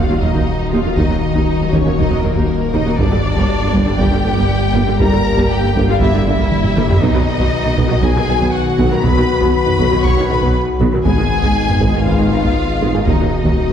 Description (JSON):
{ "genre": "cinematic, hybrid orchestral and electronic film score", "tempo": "119 BPM", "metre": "4/4", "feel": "straight", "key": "unclear", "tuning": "A4 = 441 Hz", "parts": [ { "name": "warm symphonic violin section", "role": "melody", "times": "0.0-13.7 s", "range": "Bb4 to Db6", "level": "-22 LUFS", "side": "left 3 dB", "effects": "none" }, { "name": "warm symphonic violin section", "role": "second line", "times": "0.0-13.7 s", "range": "Bb3 to Db5", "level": "-24 LUFS", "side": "left 1 dB", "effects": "none" }, { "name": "warm studio viola section", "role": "accompaniment", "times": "0.0-13.7 s", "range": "D3 to Eb4", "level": "-24 LUFS", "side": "right 1 dB", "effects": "none" }, { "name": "dark French horn section", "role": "sustained chords", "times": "0.0-13.7 s", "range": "Bb3 to G4", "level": "-23 LUFS", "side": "left 5 dB", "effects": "none" }, { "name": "glassy FM pad", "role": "sustained chords", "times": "0.0-13.7 s", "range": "Eb3 to F#5", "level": "-22 LUFS", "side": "left 1 dB", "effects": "ensemble chorus, built-in reverb" }, { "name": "soft round pluck", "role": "arpeggios", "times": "0.0-13.7 s", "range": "Eb3 to B4", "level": "-24 LUFS", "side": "left 2 dB", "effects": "none" }, { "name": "detuned saw bass", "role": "bass", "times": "0.0-13.7 s", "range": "Eb1 to B1", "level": "-22 LUFS", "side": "equal", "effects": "none" }, { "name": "rich symphonic double bass section", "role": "bass", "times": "0.0-13.1 s", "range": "G1 to Eb2", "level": "-23 LUFS", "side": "right 3 dB", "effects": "none" }, { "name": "impact and cymbal swell", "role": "sound effects", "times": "0.0-1.0, 13.1-13.7 s", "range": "none", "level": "barely audible", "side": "none", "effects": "none" }, { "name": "warm symphonic cello section", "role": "bass", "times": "0.1-13.7 s", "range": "Eb2 to B2", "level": "-22 LUFS", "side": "right 2 dB", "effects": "none" }, { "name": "warm tuba", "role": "bass", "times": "0.2-13.1 s", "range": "G1 to Eb2", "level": "-25 LUFS", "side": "right 3 dB", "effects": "none" }, { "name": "solo taiko drums", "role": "drums", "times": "0.3-13.7 s", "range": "none", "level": "-20 LUFS", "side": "equal", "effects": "none" } ], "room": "wet scoring stage reverb, RT60 1.8 s", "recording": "heard from further back in the room", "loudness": "-12 LUFS", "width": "side -8 dB against mid", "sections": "0.0-13.7 A section", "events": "impact 0.0-1.0; drum fill 6.5-7.0", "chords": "0.0 Ebm; 3.0 Gm; 7.0 B; 11.1 Abm; 13.1 Ebm" }